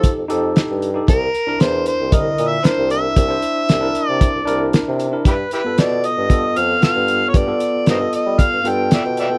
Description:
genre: straight-eighth soul blues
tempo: 115 BPM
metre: 4/4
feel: straight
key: unclear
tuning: A4 = 440 Hz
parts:
  - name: overdriven harmonica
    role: melody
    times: 0.0-9.4 s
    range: E4 to G5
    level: -22 LUFS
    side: equal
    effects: none
  - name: tine electric piano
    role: accompaniment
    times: 0.0-9.4 s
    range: D3 to C5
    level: -25 LUFS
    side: equal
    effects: none
  - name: mellow bassoon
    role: bass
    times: 0.0-9.3 s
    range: C2 to G3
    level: -25 LUFS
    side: equal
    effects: none
  - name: cloth-damped thuddy drum kit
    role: drums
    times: 0.0-9.3 s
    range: hi-hat, kick drum, snare drum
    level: -18 LUFS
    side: equal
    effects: none
room: little or no reverb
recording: dry, close 1970s-style studio recording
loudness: -17 LUFS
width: mono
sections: 0.0-9.4 A section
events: none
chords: 0.0 F9; 1.1 C9; 5.3 G9

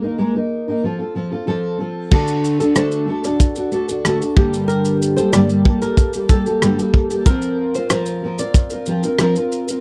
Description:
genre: acoustic pop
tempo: 93 BPM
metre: 4/4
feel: straight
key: unclear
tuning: A4 = 440 Hz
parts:
  - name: fingerpicked steel-string acoustic guitar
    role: accompaniment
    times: 0.0-9.8 s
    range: G2 to Bb4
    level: -20 LUFS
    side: equal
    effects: double-tracked
  - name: flamenco guitar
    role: arpeggios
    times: 2.1-8.8 s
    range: F#4 to D5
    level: -28 LUFS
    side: equal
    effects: slapback echo
  - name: loose indie drum kit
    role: drums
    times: 2.1-9.8 s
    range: crash cymbal, kick drum, rim click, shaker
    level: -18 LUFS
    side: equal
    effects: none
room: little or no reverb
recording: dry, close 1970s-style studio recording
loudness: -18 LUFS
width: mono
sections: 0.0-2.1 A section; 2.1-9.8 B section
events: none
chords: 0.0 Absus2; 0.8 F; 2.1 D; 4.4 Gmadd9; 7.3 Fsus4

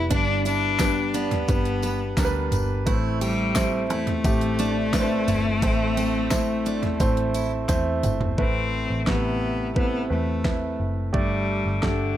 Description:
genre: piano-driven pop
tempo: 87 BPM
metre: 4/4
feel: straight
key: A minor, A dorian from 8.4 s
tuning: A4 = 438 Hz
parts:
  - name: clear cello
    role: melody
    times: 0.0-12.2 s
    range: D3 to D4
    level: -27 LUFS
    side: left 4 dB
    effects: ping-pong delay
  - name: warm concert grand piano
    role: accompaniment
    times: 0.0-12.2 s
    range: G2 to D5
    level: -27 LUFS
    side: right 2 dB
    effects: none
  - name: vintage muted picked electric bass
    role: bass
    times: 0.0-12.2 s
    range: F#1 to E2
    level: -28 LUFS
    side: equal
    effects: none
  - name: picked steel-string acoustic guitar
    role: riff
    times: 0.1-7.5 s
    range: B3 to G4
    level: -31 LUFS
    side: right 7 dB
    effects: none
  - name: pop drum kit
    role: drums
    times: 0.1-12.0 s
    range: hi-hat, kick drum, snare drum, toms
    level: -25 LUFS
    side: equal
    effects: overdrive
  - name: tambourine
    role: percussion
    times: 0.5-8.2 s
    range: none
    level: -40 LUFS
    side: left 9 dB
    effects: none
room: light reverb, small room ambience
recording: none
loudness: -21 LUFS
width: side -12 dB against mid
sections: 0.0-8.4 A section; 8.4-12.2 B section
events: drum fill 7.7-8.4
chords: 0.1 G; 2.9 Am; 8.4 Amadd9; 11.1 Gsus2

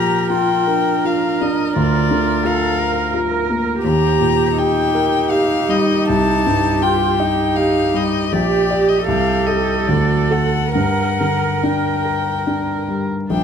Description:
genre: classical, slow romantic movement for piano quartet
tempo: 66-88 BPM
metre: 3/4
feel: rubato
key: G minor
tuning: A4 = 442 Hz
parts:
  - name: warm violin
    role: melody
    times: 0.0-13.4 s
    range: D5 to Bb5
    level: -21 LUFS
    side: left 8 dB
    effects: none
  - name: warm cello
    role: second line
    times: 0.0-13.4 s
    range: G3 to Bb4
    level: -21 LUFS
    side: right 5 dB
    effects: none
  - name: clear grand piano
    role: accompaniment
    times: 0.0-13.4 s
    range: Bb1 to Eb5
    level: -19 LUFS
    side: left 1 dB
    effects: none
  - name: rich viola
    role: accompaniment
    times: 0.0-13.4 s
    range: D4 to Bb4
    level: -23 LUFS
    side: right 4 dB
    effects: none
room: light reverb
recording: dark, warm production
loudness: -15 LUFS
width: side -7 dB against mid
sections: 0.0-13.3 A section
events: none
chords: 0.0 Bb; 1.8 Bb/D; 3.8 Eb; 6.1 Cm; 8.3 Gm/Bb; 9.1 Am7b5/C; 9.9 D; 10.7 Gm

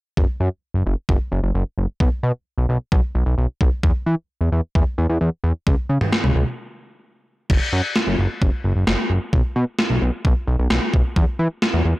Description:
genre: synth-pop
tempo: 131 BPM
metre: 4/4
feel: straight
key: unclear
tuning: A4 = 441 Hz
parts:
  - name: fat analog bass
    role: bass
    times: 0.2-11.9 s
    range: F#1 to E3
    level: -19 LUFS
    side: equal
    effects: none
  - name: gated 80s digital drum machine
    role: drums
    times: 0.2-11.7 s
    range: crash cymbal, kick drum, snare drum, toms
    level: -19 LUFS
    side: equal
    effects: gated reverb, gated reverb snare
room: light reverb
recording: blown-out, overdriven recording, overdrive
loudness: -18 LUFS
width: side -19 dB against mid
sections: 0.2-7.5 A section; 7.5-12.0 B section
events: break 6.6-7.5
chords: none

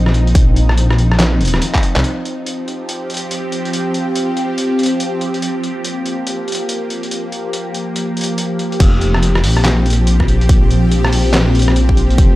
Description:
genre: deep dubstep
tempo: 142 BPM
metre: 4/4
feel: swing 62% on 16ths, half-time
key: unclear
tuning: A4 = 440 Hz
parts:
  - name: bowed-like drone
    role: sustained chords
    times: 0.0-12.4 s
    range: F3 to G4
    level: -19 LUFS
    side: equal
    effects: built-in reverb, phaser
  - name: dark detuned saw bass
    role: bass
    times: 0.0-2.0, 8.8-12.4 s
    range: Eb1 to C2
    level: -13 LUFS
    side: equal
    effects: none
  - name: trip hop sampler-style drum kit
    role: drums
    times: 0.1-12.3 s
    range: crash cymbal, handclaps, hi-hat, rim click, snare drum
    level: -20 LUFS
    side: equal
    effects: none
  - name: electronic kick drum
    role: drums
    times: 0.4-1.8, 8.8-12.3 s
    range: none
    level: -12 LUFS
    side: equal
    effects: none
room: light reverb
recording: dry, gritty hardware recording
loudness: -13 LUFS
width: side -17 dB against mid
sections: 0.0-2.0 A section; 2.0-8.8 B section; 8.8-12.4 C section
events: drum fill 1.7-2.0; drop 8.8-12.4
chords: 0.0 F5

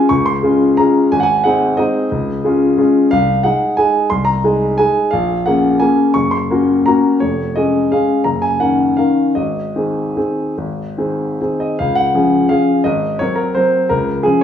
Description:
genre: classical, piano waltz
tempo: 140-194 BPM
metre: 3/4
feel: rubato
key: Db major from 3.1 s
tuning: A4 = 440 Hz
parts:
  - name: warm grand piano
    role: solo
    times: 0.0-14.4 s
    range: F1 to Db6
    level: -12 LUFS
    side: left 1 dB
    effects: none
room: wet large studio reverb, RT60 1.1 s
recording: heard from further back in the room, small room ambience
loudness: -13 LUFS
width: side -9 dB against mid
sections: 0.0-11.8 A section; 11.8-14.4 B section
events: none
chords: 0.0 Db; 1.1 Ab7; 2.1 Db; 3.1 Ab/C; 5.1 Bbm7; 6.2 Gb; 7.2 Db/F; 8.3 Ebm7/Gb; 9.3 Ab; 11.8 Db; 12.8 Ab9; 13.9 Db

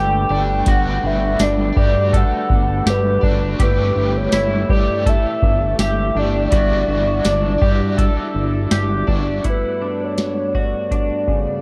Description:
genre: dream pop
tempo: 82 BPM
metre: 4/4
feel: straight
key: G lydian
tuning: A4 = 440 Hz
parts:
  - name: warbly nostalgic lead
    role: melody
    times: 0.0-11.6 s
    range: B4 to G5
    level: -24 LUFS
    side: equal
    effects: chorus, tape echo, shimmer reverb
  - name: crunchy overdriven guitar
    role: accompaniment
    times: 0.0-9.5 s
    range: E3 to D5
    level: -30 LUFS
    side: equal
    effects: tremolo, subtle chorus, shimmer reverb
  - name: percussive tonewheel organ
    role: sustained chords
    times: 0.0-11.6 s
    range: G2 to B4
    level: -29 LUFS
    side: equal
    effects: chorus vibrato, fast rotary speaker, shimmer reverb
  - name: clean electric guitar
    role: arpeggios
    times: 0.0-11.6 s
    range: C#3 to A4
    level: -28 LUFS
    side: equal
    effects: analog chorus, tape echo, shimmer reverb
  - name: chorused synth bass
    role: bass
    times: 0.0-9.4 s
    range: G1 to G2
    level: -23 LUFS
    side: equal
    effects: none
  - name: booming analog drum machine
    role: drums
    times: 0.7-11.5 s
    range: hi-hat, kick drum, snare drum, tambourine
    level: -21 LUFS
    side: equal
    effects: none
room: moderate recital hall reverb, RT60 1.7 s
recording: dark, warm production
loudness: -18 LUFS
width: mono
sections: 0.0-9.5 A section; 9.5-11.6 B section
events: none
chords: 0.0 Gmaj9; 3.6 A7/G; 6.5 Em9/G; 9.5 Gmaj9

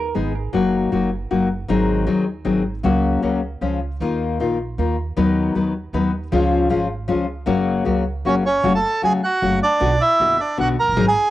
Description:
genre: tango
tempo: 155 BPM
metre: 3/4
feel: rubato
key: F# major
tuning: A4 = 444 Hz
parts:
  - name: hollow-body jazz guitar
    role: second line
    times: 0.0-0.9 s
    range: G#4 to A#4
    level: -30 LUFS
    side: right 8 dB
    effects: cassette tape, analog delay
  - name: upright bass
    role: bass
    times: 0.0-11.1 s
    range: E#1 to D#2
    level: -25 LUFS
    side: right 2 dB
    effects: tube saturation
  - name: nylon-string guitar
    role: accompaniment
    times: 0.1-11.1 s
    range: B2 to B4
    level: -19 LUFS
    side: left 3 dB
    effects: cassette tape
  - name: bandoneon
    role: melody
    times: 8.3-11.3 s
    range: C#4 to A#5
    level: -17 LUFS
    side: right 2 dB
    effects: cassette tape
room: moderate spring reverb, RT60 1.3 s, small room ambience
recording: home recording on cassette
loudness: -17 LUFS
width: side -14 dB against mid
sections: 0.0-8.6 A section; 8.6-11.3 B section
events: none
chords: 0.0 G#m; 0.5 D#m/F#; 1.7 G#7; 2.8 F#/C#; 3.6 C#; 4.0 D#sus2; 5.2 B/D#; 6.3 C#; 7.5 F#; 8.6 F#m; 9.8 Bm

